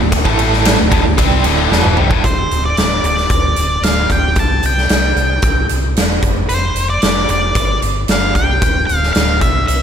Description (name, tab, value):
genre	classic rock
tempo	113 BPM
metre	4/4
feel	straight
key	D minor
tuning	A4 = 440 Hz
part	biting overdriven guitar	riff	0.0-2.2 s	D2 to C4	-19 LUFS	right 10 dB	tremolo
part	tight distorted guitar	riff	0.0-2.2 s	D2 to C4	-19 LUFS	left 10 dB	distortion, slapback echo
part	fingered electric bass	bass	0.0-9.8 s	D1 to C2	-18 LUFS	equal	none
part	huge arena drum kit	drums	0.1-9.8 s	hi-hat, kick drum, ride cymbal, snare drum, toms	-15 LUFS	equal	none
part	octave-fuzz lead guitar	melody	2.3-9.8 s	C5 to A5	-17 LUFS	left 1 dB	distortion, slapback echo
room	light reverb, small room ambience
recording	none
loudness	-12 LUFS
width	side -8 dB against mid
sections	0.0-2.2 A section; 2.2-9.8 B section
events	drum fill 1.7-2.2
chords	0.3 A5; 0.8 D5; 2.2 N.C.; 4.4 C; 6.2 Dm7/F; 7.5 G7sus4; 8.6 Dmadd11